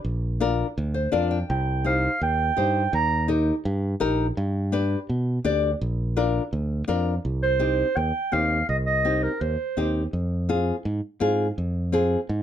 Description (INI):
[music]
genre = latin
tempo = 166 BPM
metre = 4/4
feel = straight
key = C minor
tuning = A4 = 442 Hz
[part]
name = fingered electric bass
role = bass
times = 0.0-12.4 s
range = Bb1 to B2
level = -25 LUFS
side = right 1 dB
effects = none
[part]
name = nylon-string guitar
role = accompaniment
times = 0.4-12.2 s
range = C4 to G5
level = -24 LUFS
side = left 3 dB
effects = none
[part]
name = mellow clarinet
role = melody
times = 1.5-3.3, 7.4-10.0 s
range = Bb4 to Bb5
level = -24 LUFS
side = right 3 dB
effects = plate reverb
[sound]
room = moderate studio reverb, RT60 0.5 s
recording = none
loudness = -22 LUFS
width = side -10 dB against mid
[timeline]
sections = 0.0-7.2 A section; 7.2-12.4 B section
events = nylon-string guitar fill 0.8-1.5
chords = 0.0 Bb; 1.5 Cm; 2.9 Eb; 4.4 G; 5.8 Bb; 7.2 Cm; 10.1 Fm